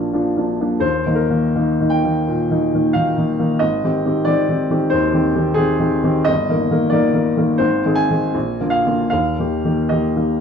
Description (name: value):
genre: classical, romantic character piece for solo piano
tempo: 74-95 BPM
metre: 4/4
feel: rubato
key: Eb major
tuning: A4 = 442 Hz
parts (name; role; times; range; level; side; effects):
- clear baby grand piano; solo; 0.0-10.4 s; G1 to Ab5; -15 LUFS; equal; none
room: moderate large studio reverb, RT60 1.2 s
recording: dark, warm production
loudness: -15 LUFS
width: side -7 dB against mid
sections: 0.0-10.4 A section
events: none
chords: 0.0 Bb; 0.8 Eb; 3.6 Abmaj7; 6.3 Eb/G; 7.6 Ab; 8.3 Bb7; 9.1 Eb